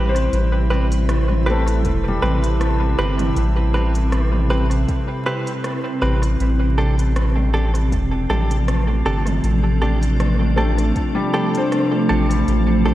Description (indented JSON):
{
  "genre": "ambient dub",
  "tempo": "79 BPM",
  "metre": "4/4",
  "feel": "swing 55% on 16ths",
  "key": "A minor",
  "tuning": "A4 = 442 Hz",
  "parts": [
    { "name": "soft additive organ-like pad", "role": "sustained chords", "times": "0.0-12.9 s", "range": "C3 to E4", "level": "-22 LUFS", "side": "equal", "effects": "ensemble chorus, built-in reverb" },
    { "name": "direct-recorded clean electric guitar", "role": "stabs", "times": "0.0-12.9 s", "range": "C4 to B4", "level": "-26 LUFS", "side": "right 1 dB", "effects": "vintage 12-bit sampler grit, dub echo" },
    { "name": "round analog bass", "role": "bass", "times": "0.0-12.9 s", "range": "E1 to A1", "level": "-18 LUFS", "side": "equal", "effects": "none" },
    { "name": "felt-muted upright piano", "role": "arpeggios", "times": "0.1-12.9 s", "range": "G3 to C5", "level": "-27 LUFS", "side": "left 3 dB", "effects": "diffuse ambient delay" },
    { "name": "organic electronic drum kit", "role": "drums", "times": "0.2-12.6 s", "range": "hi-hat, rim click, toms", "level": "-31 LUFS", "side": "equal", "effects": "overdrive, dub echo" },
    { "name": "electronic kick drum", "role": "drums", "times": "1.8-11.1 s", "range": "none", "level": "-24 LUFS", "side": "equal", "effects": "none" }
  ],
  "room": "light reverb",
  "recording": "vinyl crackle",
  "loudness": "-16 LUFS",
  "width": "side -14 dB against mid",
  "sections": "0.0-12.9 A section",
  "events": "none",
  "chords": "0.0 Am7; 6.4 F6"
}